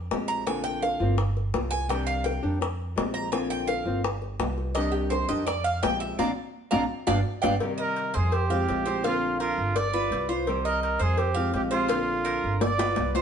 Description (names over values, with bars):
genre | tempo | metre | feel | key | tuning
latin, Cuban son and guajira | 168 BPM | 4/4 | straight | C minor | A4 = 440 Hz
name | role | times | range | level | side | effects
upright bass | bass | 0.0-13.2 s | G1 to F2 | -30 LUFS | right 1 dB | none
nylon-string guitar | accompaniment | 0.1-13.2 s | C3 to G4 | -31 LUFS | left 2 dB | none
bongos and cowbell | percussion | 0.1-13.2 s | none | -31 LUFS | left 4 dB | none
Cuban tres | arpeggios | 0.3-13.2 s | F4 to Bb5 | -30 LUFS | right 3 dB | none
breathy trumpet | melody | 7.8-13.1 s | F4 to D5 | -28 LUFS | right 3 dB | none
room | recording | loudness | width
moderate stone room reverb, RT60 1.0 s | band playing live in one room, nothing above 10.9 kHz | -24 LUFS | side -7 dB against mid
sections
0.0-7.6 A section; 7.6-13.2 B section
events
Cuban tres solo 0.0-7.6; band accent 6.2-7.6; drum fill 11.9-13.2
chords
0.5 Bbadd9; 1.2 G7; 1.9 Cmadd9; 2.6 Fmadd9; 3.3 Bbadd9; 4.0 G7; 4.8 Cmadd9; 5.5 Fmadd9; 6.2 Bbadd9; 6.9 G7; 7.6 Cm; 8.3 Fmadd9; 9.0 Bbadd9; 9.8 G7; 10.5 Cm; 11.2 Fmadd9; 11.9 Bbadd9; 12.6 G7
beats
0.11 | 0.47 0.83 1.18 1.54 | 1.90 2.25 2.61 2.97 | 3.33 3.68 4.04 4.40 | 4.75 5.11 5.47 5.83 | 6.18 6.54 6.90 7.25 | 7.61 7.97 8.32 8.68 | 9.04 9.40 9.75 10.11 | 10.47 10.82 11.18 11.54 | 11.90 12.26 12.61 12.97